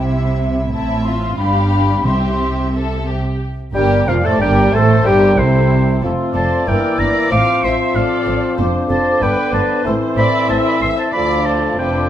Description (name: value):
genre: quick classical-period movement for symphony orchestra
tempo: 93 BPM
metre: 2/4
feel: rubato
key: C major, F major from 3.4 s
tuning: A4 = 440 Hz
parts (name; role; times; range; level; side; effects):
- muted studio violin section; melody; 0.0-12.1 s; C4 to F5; -27 LUFS; left 5 dB; none
- mellow large flute ensemble; second line; 0.0-12.1 s; C5 to E6; -25 LUFS; left 1 dB; none
- muted studio violin section; second line; 0.0-12.1 s; E4 to F5; -24 LUFS; left 1 dB; none
- muted studio viola section; accompaniment; 0.0-12.1 s; C4 to E5; -25 LUFS; equal; none
- muted studio double bass section; bass; 0.0-12.1 s; F1 to D2; -20 LUFS; right 2 dB; none
- muted symphonic cello section; bass; 0.0-12.1 s; C2 to C3; -21 LUFS; right 2 dB; none
- timpani; percussion; 2.0-3.0 s; C3; -23 LUFS; equal; none
- dark clarinet; second line; 3.7-12.1 s; C4 to C5; -24 LUFS; left 1 dB; none
- warm bassoon; accompaniment; 3.7-12.1 s; C3 to A3; -21 LUFS; right 1 dB; none
- dark French horn section; sustained chords; 3.7-12.1 s; C3 to F4; -21 LUFS; left 5 dB; none
- warm oboe; second line; 3.8-12.1 s; C5 to D6; -20 LUFS; right 1 dB; none
room: moderate recital hall reverb, RT60 1.5 s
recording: none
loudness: -13 LUFS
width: side -11 dB against mid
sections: 0.0-3.4 A section; 3.4-12.1 B section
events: none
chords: 0.0 C; 0.7 Am; 1.4 G7; 2.1 C; 3.4 Gm; 4.1 Bb; 4.7 C; 6.0 F; 6.7 Edim/G; 7.3 F/A; 8.6 Dm7/F; 9.2 G; 9.9 Am; 11.1 Dm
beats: 0.08 | 0.72 1.38 | 2.05 2.73 | 3.41 4.07 | 4.73 5.38 | 6.03 6.66 | 7.31 7.95 | 8.58 9.22 | 9.85 10.49 | 11.14 11.80